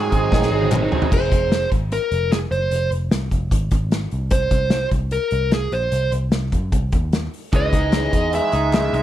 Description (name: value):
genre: jangly indie pop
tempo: 150 BPM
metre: 4/4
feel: straight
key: unclear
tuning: A4 = 441 Hz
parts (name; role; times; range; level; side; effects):
- dark smooth lead guitar; melody; 0.0-9.0 s; Ab4 to Fb5; -22 LUFS; right 1 dB; overdrive, slapback echo
- crunchy overdriven guitar; accompaniment; 0.0-1.1, 7.5-9.0 s; Ab2 to Ab4; -24 LUFS; right 5 dB; phaser
- electric guitar through a small old amp; arpeggios; 0.0-1.7, 7.5-9.0 s; Fb3 to Ab4; -24 LUFS; left 1 dB; none
- picked electric bass; bass; 0.0-9.0 s; F1 to Gb2; -23 LUFS; equal; none
- loose indie drum kit; drums; 0.1-9.0 s; crash cymbal, hi-hat, kick drum, snare drum, toms; -21 LUFS; equal; none
- group handclap; percussion; 0.7-0.8, 7.9-8.8 s; none; -34 LUFS; left 8 dB; none
room: little or no reverb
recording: none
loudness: -17 LUFS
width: side -12 dB against mid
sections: 0.0-1.1 A section; 1.1-9.0 B section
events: drum fill 0.3-1.1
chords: 0.0 Ab7; 1.1 Fm; 4.1 N.C.; 7.5 Dbmadd9